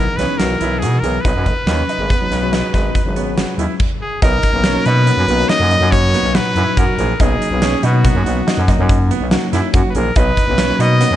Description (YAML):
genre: progressive instrumental, band music in an uneven meter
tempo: 141 BPM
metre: 7/4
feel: straight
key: B major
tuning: A4 = 440 Hz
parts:
  - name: bright trumpet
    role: melody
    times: 0.0-11.2 s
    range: F#4 to D#5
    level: -19 LUFS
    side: left 1 dB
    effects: ping-pong delay
  - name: bell-like tine electric piano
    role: accompaniment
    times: 0.0-11.2 s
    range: A#2 to F#4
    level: -22 LUFS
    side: left 4 dB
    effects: auto-pan
  - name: bright concert grand piano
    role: arpeggios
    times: 0.0-11.1 s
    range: B3 to G#4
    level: -23 LUFS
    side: right 7 dB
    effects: none
  - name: growling FM bass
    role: bass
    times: 0.0-11.2 s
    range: G#1 to B2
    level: -17 LUFS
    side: equal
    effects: none
  - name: big rock drum kit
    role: drums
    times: 0.2-11.1 s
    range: crash cymbal, hi-hat, kick drum, snare drum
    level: -18 LUFS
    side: equal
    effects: none
room: light reverb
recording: nothing above 10.5 kHz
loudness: -13 LUFS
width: side -12 dB against mid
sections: 0.0-4.2 A section; 4.2-11.2 B section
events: none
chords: 0.0 B6; 4.2 Bmaj7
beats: 0.40 0.82 | 1.25 1.68 2.10 2.53 2.95 3.38 3.80 | 4.23 4.65 5.08 5.50 5.93 6.35 6.78 | 7.20 7.62 8.05 8.47 8.90 9.32 9.74 | 10.17 10.59 11.02